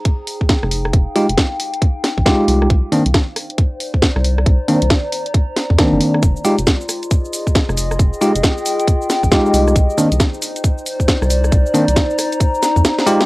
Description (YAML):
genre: UK garage, two-step garage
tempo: 136 BPM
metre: 4/4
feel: swing 62% on 16ths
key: F minor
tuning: A4 = 439 Hz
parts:
  - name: warbly tape-like pad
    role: texture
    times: 0.0-13.3 s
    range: Eb4 to Bb5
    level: -22 LUFS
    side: left 1 dB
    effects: chorus, built-in reverb, sidechain pumping, cassette tape
  - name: electronic kick drum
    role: drums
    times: 0.1-12.8 s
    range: none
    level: -15 LUFS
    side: equal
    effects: cassette tape
  - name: garage drum kit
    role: drums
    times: 0.1-13.3 s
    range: cabasa, hi-hat, rim click, snare drum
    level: -18 LUFS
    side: equal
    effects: cassette tape
  - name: rubbery square bass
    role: bass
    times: 0.6-12.8 s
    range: F1 to F2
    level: -17 LUFS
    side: equal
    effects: sidechain pumping
  - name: bell-like tine electric piano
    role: stabs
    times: 1.2-13.3 s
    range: Eb3 to G4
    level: -16 LUFS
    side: equal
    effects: medium stereo tremolo, cassette tape, tape echo
room: light reverb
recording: home recording on cassette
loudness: -13 LUFS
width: side -21 dB against mid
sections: 0.0-13.3 A section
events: kick drops out 12.8-13.3; drum fill 13.0-13.3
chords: 0.0 Fm9; 2.7 Cm9; 6.2 Fm9; 9.8 Cm9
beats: 0.05 0.49 | 0.93 1.38 1.82 2.26 | 2.70 3.14 3.58 4.02 | 4.46 4.90 5.34 5.79 | 6.23 6.67 7.11 7.55 | 7.99 8.43 8.88 9.32 | 9.76 10.20 10.64 11.08 | 11.52 11.96 12.40 12.85